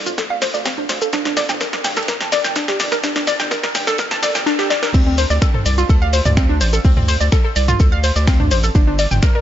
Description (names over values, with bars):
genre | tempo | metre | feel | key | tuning
melodic techno | 126 BPM | 4/4 | straight | D minor | A4 = 444 Hz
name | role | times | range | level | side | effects
round analog bass | bass | 0.0-9.2 s | F1 to D2 | -20 LUFS | equal | sidechain pumping, high-pass filter
analog pluck | arpeggios | 0.1-9.4 s | C4 to A5 | -19 LUFS | equal | chorus, sidechain pumping, dub echo
punchy analog drum machine | drums | 0.1-9.3 s | crash cymbal, finger snaps, hi-hat, shaker, snare drum, toms | -21 LUFS | equal | high-pass filter on hats, high-pass filter on perc, high-pass filter on snare, high-pass filter on toms, high-pass filter on cymbals, high-pass filter on room
electronic kick drum | drums | 0.2-9.3 s | none | -14 LUFS | equal | high-pass filter on kick
raw garage drum kit | drums | 0.2-9.3 s | hi-hat, ride cymbal, snare drum | -32 LUFS | right 1 dB | none
room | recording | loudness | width
light reverb | nothing above 7.7 kHz | -14 LUFS | side -11 dB against mid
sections
0.0-4.9 A section; 4.9-9.4 B section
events
build-up 0.0-4.9; drum fill 0.0-4.5, 4.5-4.9; filter sweep on synth arpeggio sound 0.0-4.9; drop 4.9-9.4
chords
0.0 Dm7; 1.1 Gmadd9; 4.9 Dm7; 8.8 Gm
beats
0.18 0.66 | 1.13 1.61 2.08 2.56 | 3.04 3.51 3.99 4.46 | 4.94 5.42 5.89 6.37 | 6.85 7.32 7.80 8.28 | 8.75 9.23